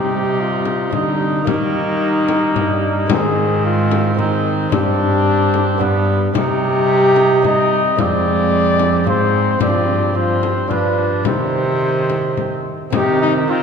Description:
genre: classical, renaissance-style consort dance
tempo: 110 BPM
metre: 3/4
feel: straight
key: C minor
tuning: A4 = 439 Hz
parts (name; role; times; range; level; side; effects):
- dark cornet; melody; 0.0-13.6 s; D4 to Eb5; -19 LUFS; left 4 dB; none
- warm cor anglais; second line; 0.0-13.6 s; Bb3 to Eb4; -24 LUFS; right 4 dB; none
- lute; accompaniment; 0.0-13.6 s; F2 to Eb5; -25 LUFS; right 6 dB; none
- warm viola; accompaniment; 0.0-13.6 s; Eb3 to Ab3; -23 LUFS; left 1 dB; none
- rich cello; bass; 0.0-13.6 s; F2 to Eb3; -19 LUFS; right 1 dB; none
- frame drum; percussion; 0.7-13.2 s; none; -24 LUFS; left 6 dB; none
room: wet church reverb, RT60 2.9 s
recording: dark, warm production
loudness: -14 LUFS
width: side -6 dB against mid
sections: 0.0-12.9 A section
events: none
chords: 0.0 Cm; 1.5 Eb; 3.1 Ab; 4.7 Gsus4; 5.8 G; 6.4 Cm; 8.0 Fm; 9.6 G7sus4; 10.7 G7; 11.3 Cm

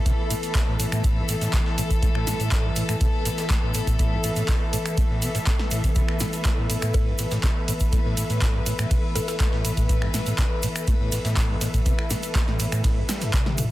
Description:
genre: acid house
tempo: 122 BPM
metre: 4/4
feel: straight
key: unclear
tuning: A4 = 439 Hz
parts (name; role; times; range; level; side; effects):
- warm chamber string section; sustained chords; 0.0-13.7 s; E3 to B4; -30 LUFS; left 2 dB; sidechain pumping
- granular cloud pad; texture; 0.0-13.7 s; A4 to B5; -33 LUFS; equal; built-in reverb, sidechain pumping
- overdriven acid bass; riff; 0.1-13.7 s; G2 to A3; -28 LUFS; equal; distortion, tube saturation, ensemble chorus, cassette tape, sidechain pumping
- breakbeat sampler-style drum kit; drums; 0.1-13.7 s; hi-hat, snare drum; -40 LUFS; right 1 dB; none
- electronic kick drum; drums; 0.1-13.4 s; none; -23 LUFS; equal; none
- punchy analog drum machine; drums; 0.1-13.7 s; finger snaps, handclaps, hi-hat, ride cymbal, snare drum, toms; -31 LUFS; right 1 dB; overdrive
- tube shaker; percussion; 0.1-13.7 s; none; -35 LUFS; equal; none
- mallet-like synth pluck; melody; 6.9-9.4 s; A4; -38 LUFS; left 2 dB; none
room: little or no reverb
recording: dense, heavily limited modern master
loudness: -21 LUFS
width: side -16 dB against mid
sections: 0.0-13.7 A section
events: drum fill 13.5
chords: 0.0 A5

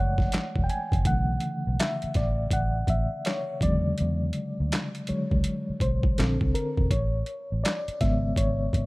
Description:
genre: R&B, neo-soul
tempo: 82 BPM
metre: 4/4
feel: swing 63% on 16ths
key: B dorian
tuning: A4 = 443 Hz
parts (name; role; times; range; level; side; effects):
- reed electric piano; accompaniment; 0.0-8.9 s; C#3 to G#5; -29 LUFS; left 1 dB; fast tremolo
- vintage muted fingered electric bass; bass; 0.0-8.9 s; E1 to E2; -27 LUFS; equal; none
- boom bap sampler-style drum kit; drums; 0.2-8.9 s; handclaps, hi-hat, kick drum, snare drum; -27 LUFS; equal; overdrive
room: little or no reverb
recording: rough home demo mix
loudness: -24 LUFS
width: side -22 dB against mid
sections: 0.0-8.9 A section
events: reed electric piano solo 0.0-8.9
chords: 0.0 F#m9; 1.0 Bm11; 3.6 E13; 6.2 A#maj9; 6.9 Amaj9

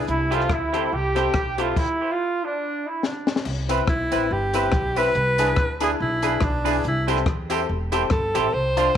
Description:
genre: ska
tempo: 142 BPM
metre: 4/4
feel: swing 57% on 8ths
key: unclear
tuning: A4 = 440 Hz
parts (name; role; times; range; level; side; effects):
- bright upright piano; stabs; 0.0-8.9 s; C4 to C5; -28 LUFS; left 11 dB; none
- warm horn section; melody; 0.1-3.4 s; D4 to G4; -24 LUFS; right 2 dB; none
- upright bass; bass; 0.1-8.9 s; E1 to E2; -27 LUFS; equal; none
- compact cocktail drum kit; drums; 0.1-8.9 s; crash cymbal, hi-hat, kick drum, rim click, snare drum; -26 LUFS; left 2 dB; none
- clean electric guitar; accompaniment; 0.3-8.9 s; C4 to C5; -27 LUFS; right 10 dB; spring reverb, tape echo
- tambourine; percussion; 3.7-8.9 s; none; -41 LUFS; left 10 dB; tape echo
- edgy alto saxophone; melody; 3.9-9.0 s; D4 to C5; -23 LUFS; equal; none
room: moderate plate reverb, RT60 1.8 s, small room ambience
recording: 1960s-style stereo with parts hard left and right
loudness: -20 LUFS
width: side -9 dB against mid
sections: 0.0-3.5 A section; 3.5-9.0 B section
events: stop 1.8-3.5; drum fill 3.0-3.5; alto saxophone solo 3.5-9.0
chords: 0.1 Am7/C; 1.8 N.C.; 3.5 Cmaj7; 5.2 E7/C; 6.8 Am7/C

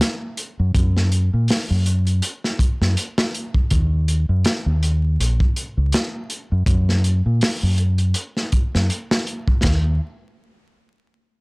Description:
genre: trip hop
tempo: 81 BPM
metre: 4/4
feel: swing 56% on 16ths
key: unclear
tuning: A4 = 438 Hz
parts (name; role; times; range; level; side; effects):
- crunchy breakbeat drum kit; drums; 0.0-9.8 s; hi-hat, kick drum, ride cymbal, snare drum; -20 LUFS; equal; none
- deep dub fingered electric bass; bass; 0.6-10.0 s; Bb1 to Bb2; -17 LUFS; equal; none
room: little or no reverb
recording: dry, gritty hardware recording, transformer saturation, vinyl crackle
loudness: -17 LUFS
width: side -36 dB against mid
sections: 0.0-9.6 A section; 9.6-11.4 B section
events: none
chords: none

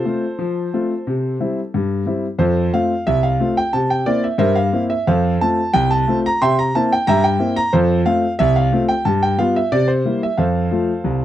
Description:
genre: ragtime piano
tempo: 90 BPM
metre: 2/4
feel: straight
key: F major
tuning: A4 = 439 Hz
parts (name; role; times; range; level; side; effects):
- clear grand piano; solo; 0.0-11.2 s; C2 to C6; -15 LUFS; equal; none
room: little or no reverb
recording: dry, close 1970s-style studio recording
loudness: -15 LUFS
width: side -12 dB against mid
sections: 0.0-11.2 A section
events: none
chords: 0.0 F; 1.1 C; 2.4 F; 3.7 C7; 5.1 F; 6.4 C7; 7.7 F; 9.1 G7; 9.7 C7; 10.4 F

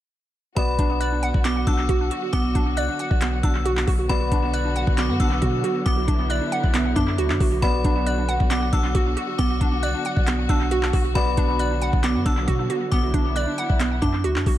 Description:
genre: hip hop, trap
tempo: 136 BPM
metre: 4/4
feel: half-time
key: B minor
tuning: A4 = 440 Hz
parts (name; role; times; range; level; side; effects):
- metallic FM bell; second line; 0.6-14.6 s; B5 to F#6; -30 LUFS; left 4 dB; chorus, analog delay
- dark baby grand piano; accompaniment; 0.6-14.6 s; B3 to D5; -33 LUFS; left 2 dB; analog delay
- rich chamber string section; sustained chords; 0.6-14.6 s; D3 to F#4; -29 LUFS; left 2 dB; none
- hollow square pluck; arpeggios; 0.6-14.6 s; B3 to F#5; -26 LUFS; right 4 dB; chorus, analog delay
- warm 808-style bass; bass; 0.6-14.6 s; B1 to B2; -24 LUFS; equal; none
- trap drum kit; drums; 0.6-14.6 s; handclaps, hi-hat, kick drum; -24 LUFS; equal; vintage 12-bit sampler grit, analog delay
room: light reverb, digital ambience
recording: echo-heavy mix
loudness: -19 LUFS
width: side -13 dB against mid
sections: 0.6-14.6 A section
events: none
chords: 0.6 Bm

